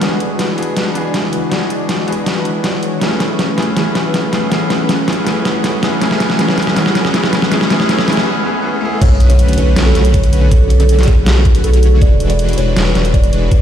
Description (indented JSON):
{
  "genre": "future bass",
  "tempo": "160 BPM",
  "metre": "4/4",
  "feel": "half-time",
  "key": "unclear",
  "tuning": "A4 = 439 Hz",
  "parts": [
    { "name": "bright concert grand piano", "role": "accompaniment", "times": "0.0-9.0 s", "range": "B3 to G#4", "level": "-21 LUFS", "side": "left 1 dB", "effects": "sidechain pumping, tape echo" },
    { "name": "airy breathy pad", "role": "sustained chords", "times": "0.0-8.2 s", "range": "G#3 to B4", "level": "-28 LUFS", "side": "right 1 dB", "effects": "none" },
    { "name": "soft supersaw", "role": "riff", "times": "0.0-13.6 s", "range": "D3 to D5", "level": "-18 LUFS", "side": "equal", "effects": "sidechain pumping, low-pass filter, tape echo" },
    { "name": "dubstep drum kit", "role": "drums", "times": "0.0-13.6 s", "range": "crash cymbal, hi-hat, snare drum", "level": "-18 LUFS", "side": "equal", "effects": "overdrive" },
    { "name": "riser, swell and impact", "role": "sound effects", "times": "0.2-10.5 s", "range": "none", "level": "-24 LUFS", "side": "equal", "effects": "none" },
    { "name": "kalimba", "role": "melody", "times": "9.0-13.6 s", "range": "F#4 to D5", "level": "-19 LUFS", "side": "right 1 dB", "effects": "sidechain pumping, ping-pong delay" },
    { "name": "saturated sub bass", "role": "bass", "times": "9.0-13.6 s", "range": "E1 to B1", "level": "-12 LUFS", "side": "equal", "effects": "sidechain pumping" },
    { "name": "electronic kick drum", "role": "drums", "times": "9.0-13.6 s", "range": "none", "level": "-11 LUFS", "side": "equal", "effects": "none" }
  ],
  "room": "moderate lush hall reverb, RT60 2.2 s",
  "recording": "played on a big sound system in a bare room, stone room reverb",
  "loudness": "-11 LUFS",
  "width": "side -9 dB against mid",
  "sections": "0.0-9.0 A section; 9.0-13.6 B section",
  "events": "build-up 0.0-9.0; drum fill 0.0-8.3; filter sweep on supersaw synth 0.0-9.0; break 8.3-9.0; swell 8.3-9.0; drop 9.0-13.6; impact 9.0-10.5",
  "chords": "0.0 E9; 3.0 Amaj9; 6.0 F#m11; 9.0 Bm9; 12.0 E9"
}